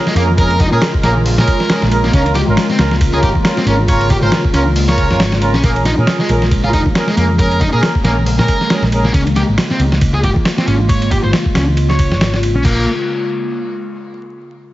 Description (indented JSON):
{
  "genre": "breakbeat, breaks",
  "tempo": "137 BPM",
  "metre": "4/4",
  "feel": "swing 57% on 16ths",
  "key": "Bb dorian",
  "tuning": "A4 = 440 Hz",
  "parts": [
    { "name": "warbly tape-like pad", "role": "sustained chords", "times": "0.0-12.9 s", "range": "Db3 to G5", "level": "-20 LUFS", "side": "left 1 dB", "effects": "chorus, built-in reverb, phaser, vintage 12-bit sampler grit, sidechain pumping" },
    { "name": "warm brass ensemble", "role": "stabs", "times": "0.0-9.1 s", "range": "Db4 to Bb4", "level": "-19 LUFS", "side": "right 2 dB", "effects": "tape echo" },
    { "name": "thick fuzz guitar", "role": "riff", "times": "0.1-12.8 s", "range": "Ab3 to Db5", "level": "-19 LUFS", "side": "equal", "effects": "distortion, low-pass filter, tape echo" },
    { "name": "dusty soul sampler-style drum kit", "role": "drums", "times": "0.1-12.7 s", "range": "crash cymbal, hi-hat, kick drum, ride cymbal, snare drum", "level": "-16 LUFS", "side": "equal", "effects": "studio reverb" },
    { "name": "hollow-body short-scale picked electric bass", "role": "bass", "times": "0.2-12.8 s", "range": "F1 to Bb2", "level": "-15 LUFS", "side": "equal", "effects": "low-pass filter" }
  ],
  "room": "light reverb",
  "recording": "heavily compressed radio sound, multiband compression, vinyl crackle, nothing above 7.7 kHz",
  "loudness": "-11 LUFS",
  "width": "side -16 dB against mid",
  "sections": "0.0-5.6 A section; 5.6-12.6 B section; 12.6-14.4 C section",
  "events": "drop 0.0-5.6",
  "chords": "0.0 Bbm7; 2.1 Db6; 5.6 Bbm7; 9.1 Db6; 12.6 Bbm7"
}